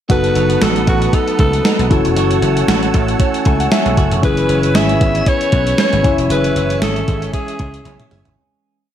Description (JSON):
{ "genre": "1980s-style pop", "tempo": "116 BPM", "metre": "4/4", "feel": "swing 55% on 16ths", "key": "unclear", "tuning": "A4 = 440 Hz", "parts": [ { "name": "breathy alto saxophone", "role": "melody", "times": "0.1-8.1 s", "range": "F#4 to E5", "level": "-20 LUFS", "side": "equal", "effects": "tape echo, plate reverb" }, { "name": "barky tine electric piano", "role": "accompaniment", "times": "0.1-8.4 s", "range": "B3 to G#5", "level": "-19 LUFS", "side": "left 5 dB", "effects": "plate reverb" }, { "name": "musette accordion", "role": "sustained chords", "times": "0.1-8.3 s", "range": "B4 to E6", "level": "-24 LUFS", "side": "right 5 dB", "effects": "plate reverb" }, { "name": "twelve-string electric guitar", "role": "riff", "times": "0.1-8.9 s", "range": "E3 to G#4", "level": "-22 LUFS", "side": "right 6 dB", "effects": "lush chorus" }, { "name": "vintage slap bass", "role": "bass", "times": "0.1-8.3 s", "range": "E1 to C#2", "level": "-18 LUFS", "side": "equal", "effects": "none" }, { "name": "gated 80s digital drum machine", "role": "drums", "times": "0.1-8.4 s", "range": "hi-hat, kick drum, snare drum, toms", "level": "-17 LUFS", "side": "equal", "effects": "gated reverb, gated reverb snare" } ], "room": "light reverb", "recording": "dark, warm production", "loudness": "-12 LUFS", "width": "side -10 dB against mid", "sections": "0.1-8.4 pre-chorus", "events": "tine electric piano fill 3.2-4.2; fade-out 6.3-8.4; drum fill 7.9-8.4", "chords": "0.1 B7/F#; 1.9 F#m7; 4.2 E6/F#; 6.0 C#m" }